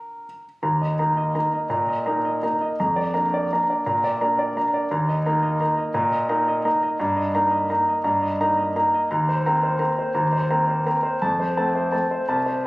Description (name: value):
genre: classical, piano waltz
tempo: 170 BPM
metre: 3/4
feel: uneven beats, rubato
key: Eb major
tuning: A4 = 438 Hz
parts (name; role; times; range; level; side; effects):
- clear grand piano; solo; 0.0-12.7 s; C2 to Bb5; -20 LUFS; equal; none
room: moderate large studio reverb, RT60 1.0 s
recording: recorded on a phone in the room, club reverb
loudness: -20 LUFS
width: side -20 dB against mid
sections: 0.6-12.7 A section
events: none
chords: 0.0 N.C.; 0.6 Eb5; 2.8 Bb/F; 4.9 Eb5; 7.0 Eb/G; 9.1 Cm7/Eb; 11.2 F